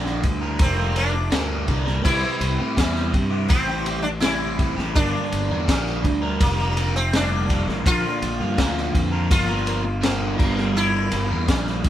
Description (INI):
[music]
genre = psychedelic rock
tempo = 83 BPM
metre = 4/4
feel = straight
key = G dorian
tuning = A4 = 439 Hz
[part]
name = sitar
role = melody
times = 0.0-11.9 s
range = Bb3 to F4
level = -27 LUFS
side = left 1 dB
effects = none
[part]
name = crunchy overdriven guitar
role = riff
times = 0.0-11.9 s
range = G2 to Bb4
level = -26 LUFS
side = right 1 dB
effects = phaser
[part]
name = fuzz fingered electric bass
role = bass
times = 0.0-11.9 s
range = F1 to A2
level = -24 LUFS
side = equal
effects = overdrive
[part]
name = crunchy breakbeat drum kit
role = drums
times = 0.1-11.9 s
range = crash cymbal, kick drum, ride cymbal, snare drum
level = -24 LUFS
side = equal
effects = none
[sound]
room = light reverb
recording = band playing live in one room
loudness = -19 LUFS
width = side -12 dB against mid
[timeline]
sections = 0.0-11.9 A section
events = none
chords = 0.0 Gm7; 2.1 C; 5.0 Gm7; 7.9 Bb; 10.4 Gm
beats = 0.60 1.33 | 2.05 2.78 3.50 4.23 | 4.95 5.68 6.41 7.13 | 7.86 8.58 9.31 10.04 | 10.76 11.49